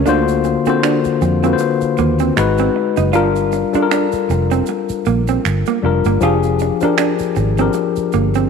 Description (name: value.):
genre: R&B, neo-soul.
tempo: 78 BPM.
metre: 4/4.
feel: swing 57% on 16ths.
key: unclear.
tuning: A4 = 440 Hz.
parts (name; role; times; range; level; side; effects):
tine electric piano; accompaniment; 0.0-8.5 s; D3 to C5; -16 LUFS; left 8 dB; none.
vintage muted fingered electric bass; bass; 0.0-8.4 s; F1 to E#2; -18 LUFS; right 2 dB; none.
electric guitar through a small old amp; second line; 0.1-8.5 s; A#3 to F4; -20 LUFS; right 13 dB; none.
egg shaker and finger snaps; percussion; 0.1-8.5 s; none; -25 LUFS; right 11 dB; none.
room: moderate echo chamber reverb, RT60 2.4 s.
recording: 1960s-style stereo with parts hard left and right.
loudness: -14 LUFS.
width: side -6 dB against mid.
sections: 0.0-8.5 A section.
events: none.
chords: 0.1 D7alt; 2.4 Abm7; 3.1 Gm7; 6.2 Fm69.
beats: | 0.05 0.82 1.59 2.36 | 3.13 3.90 4.67 5.44 | 6.21 6.98 7.75.